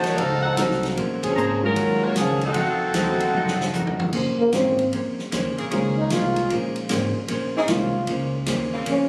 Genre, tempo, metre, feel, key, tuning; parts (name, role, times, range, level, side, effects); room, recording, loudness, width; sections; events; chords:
jazz, big band swing; 152 BPM; 4/4; swing 66% on 8ths; Bb minor; A4 = 440 Hz
warm saxophone section; melody; 0.0-3.7 s; F3 to Gb5; -26 LUFS; equal
vintage hollow-body jazz guitar; accompaniment; 0.0-9.1 s; Eb3 to C5; -30 LUFS; equal
mellow trumpet section; stabs; 0.0-3.7 s; Gb4 to Bb5; -31 LUFS; equal
upright bass; bass; 0.0-9.1 s; Ab1 to Bb2; -32 LUFS; equal
swinging big-band drum kit; drums; 0.0-9.0 s; crash cymbal, hi-hat, kick drum, ride cymbal, snare drum, toms; -32 LUFS; equal
warm grand piano; accompaniment; 0.6-7.9 s; Eb3 to F4; -30 LUFS; equal
breathy trombone; melody; 4.4-9.1 s; Bb3 to F4; -25 LUFS; equal
bright saxophone section; sustained chords; 5.6-9.1 s; Db3 to Ab4; -34 LUFS; equal
moderate concert hall reverb, RT60 1.9 s; recorded on a phone in the room, club reverb; -23 LUFS; mono
0.0-4.1 A section; 4.1-9.1 B section
band accent 1.2; drum fill 3.3-4.1; trombone solo 4.1-9.1
0.0 F7b9; 1.0 Bbm9; 1.8 Ebm9; 2.5 F7b9; 4.1 Bbm9